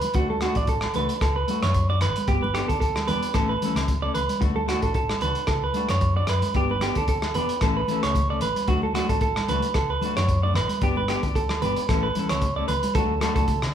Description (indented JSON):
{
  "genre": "highlife guitar band",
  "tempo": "112 BPM",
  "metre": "4/4",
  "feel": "swing 55% on 16ths",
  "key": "D major",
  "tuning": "A4 = 440 Hz",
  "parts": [
    { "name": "semi-hollow electric guitar", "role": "arpeggios", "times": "0.0-13.6 s", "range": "F#4 to D5", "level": "-26 LUFS", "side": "right 4 dB", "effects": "none" },
    { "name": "crunchy breakbeat drum kit", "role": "drums", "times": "0.0-13.7 s", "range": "hi-hat, kick drum, rim click", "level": "-27 LUFS", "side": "equal", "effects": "none" },
    { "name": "congas", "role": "percussion", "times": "0.0-12.9 s", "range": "none", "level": "-33 LUFS", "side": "right 2 dB", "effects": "none" },
    { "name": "hollow-body short-scale fingered electric bass", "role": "bass", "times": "0.1-13.7 s", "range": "E1 to D3", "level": "-28 LUFS", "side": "left 1 dB", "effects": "none" },
    { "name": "clean electric guitar", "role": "accompaniment", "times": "0.2-13.5 s", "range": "E3 to A4", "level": "-30 LUFS", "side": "left 6 dB", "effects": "none" },
    { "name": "agogo bells", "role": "percussion", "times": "0.4-13.7 s", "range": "none", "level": "-37 LUFS", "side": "equal", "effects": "none" }
  ],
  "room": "moderate large studio reverb, RT60 0.9 s",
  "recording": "band playing live in one room",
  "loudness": "-21 LUFS",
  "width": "side -9 dB against mid",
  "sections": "0.0-12.9 A section",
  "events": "none",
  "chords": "0.2 D; 2.3 G; 3.4 A; 4.4 D; 6.6 G; 7.6 A; 8.7 D; 10.8 G; 11.9 A; 12.9 D"
}